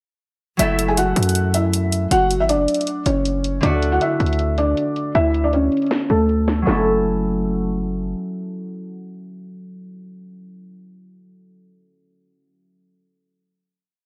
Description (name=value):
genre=hip hop, trap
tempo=158 BPM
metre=4/4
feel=half-time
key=F# minor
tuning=A4 = 440 Hz
part: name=felt-muted upright piano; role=melody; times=0.6-7.8 s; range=A3 to G#5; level=-22 LUFS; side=equal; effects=lush chorus
part: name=concert harp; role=accompaniment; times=0.6-11.2 s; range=D3 to A4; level=-27 LUFS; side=equal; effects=none
part: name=hard-hitting 808-style bass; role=bass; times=0.6-8.1 s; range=F#1 to F#2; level=-24 LUFS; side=equal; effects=none
part: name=trap drum kit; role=drums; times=0.6-6.8 s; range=handclaps, hi-hat, snare drum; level=-27 LUFS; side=equal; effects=gated reverb
room=moderate plate reverb, RT60 1.2 s, small room ambience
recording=bright 1980s-style digital production, low-pass filter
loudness=-19 LUFS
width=mono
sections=0.6-6.7 breakdown; 6.7-9.7 final chord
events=filter sweep 0.6-6.7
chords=0.6 F#m7; 3.6 Dmaj7; 6.7 F#m7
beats=| 0.59 0.97 1.35 1.73 | 2.11 2.49 2.87 3.25 | 3.63 4.01 4.39 4.77 | 5.15 5.53 5.91 6.29 | 6.67 7.05 7.43 7.81 | 8.19 8.57 8.95 9.33